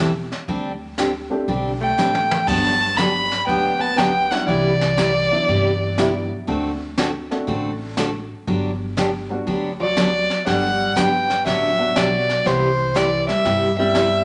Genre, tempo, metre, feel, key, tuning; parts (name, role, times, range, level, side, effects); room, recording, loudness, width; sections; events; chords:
country, western swing; 120 BPM; 4/4; swing 67% on 8ths; G major; A4 = 440 Hz
picked steel-string acoustic guitar; accompaniment; 0.0-14.1 s; C3 to A4; -26 LUFS; equal
upright bass; bass; 0.0-14.2 s; E1 to G2; -30 LUFS; equal
jazz brush drum kit; drums; 0.3-14.2 s; brushed snare drum, crash cymbal, hi-hat, kick drum, snare drum, toms; -30 LUFS; equal
clear upright piano; accompaniment; 1.3-14.2 s; F#3 to G4; -30 LUFS; equal
dark fiddle; melody; 1.8-6.3, 9.8-14.2 s; C5 to B5; -21 LUFS; equal
hollow-body jazz guitar; second line; 1.8-6.3, 9.8-14.2 s; E3 to D4; -29 LUFS; equal
moderate large studio reverb, RT60 1.4 s; nothing above 10.9 kHz; -20 LUFS; mono
0.0-10.5 A section; 10.5-14.2 A section
drum fill 2.0-2.5
0.5 D7sus4; 2.5 Gmaj7; 4.5 Cmaj9#11; 6.5 D7; 8.5 Gmaj7; 12.5 Cmaj7